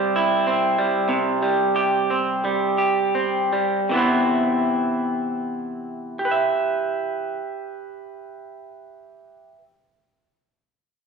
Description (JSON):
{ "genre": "folk", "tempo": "39-50 BPM", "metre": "4/4", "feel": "straight", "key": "C major", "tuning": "A4 = 441 Hz", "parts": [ { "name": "electric guitar through a small old amp", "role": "accompaniment", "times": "0.0-9.6 s", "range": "C3 to E5", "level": "-20 LUFS", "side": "right 1 dB", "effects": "none" } ], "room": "wet recital hall reverb, RT60 1.4 s", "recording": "none", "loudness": "-19 LUFS", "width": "side -5 dB against mid", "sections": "0.0-3.9 A section; 3.9-10.0 B section", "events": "slowing down 0.0-3.9", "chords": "0.0 C; 3.9 Cmaj7" }